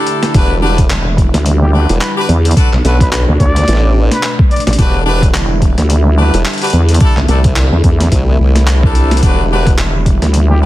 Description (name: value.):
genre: glitch hop.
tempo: 108 BPM.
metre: 4/4.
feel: swing 58% on 16ths.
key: E minor.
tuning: A4 = 440 Hz.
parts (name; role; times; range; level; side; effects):
warm analog pad; sustained chords; 0.0-10.7 s; B2 to E4; -21 LUFS; right 1 dB; chorus, sidechain pumping.
brilliant horn section; stabs; 0.0-10.7 s; D4 to B4; -18 LUFS; left 2 dB; sidechain pumping, digital delay.
boom bap sampler-style drum kit; drums; 0.1-10.5 s; handclaps, hi-hat, snare drum; -20 LUFS; equal; overdrive.
formant-sweep wobble bass; bass; 0.3-9.8 s; E1 to C2; -12 LUFS; equal; chorus, tube saturation.
electronic kick drum; drums; 0.3-10.2 s; none; -12 LUFS; equal; overdrive.
vowel-sweep wobble bass; bass; 0.9-10.7 s; E1 to E2; -10 LUFS; equal; chorus.
breathy trumpet; melody; 1.6-4.7, 10.5-10.7 s; G4 to D5; -20 LUFS; equal; digital delay.
room: digital ambience.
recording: dense, heavily limited modern master, vinyl crackle.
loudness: -9 LUFS.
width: side -16 dB against mid.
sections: 0.0-10.7 A section.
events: break 0.0-0.3.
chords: 0.3 Em7; 2.6 Bm7; 4.8 Em7; 7.0 C69; 9.2 Em7.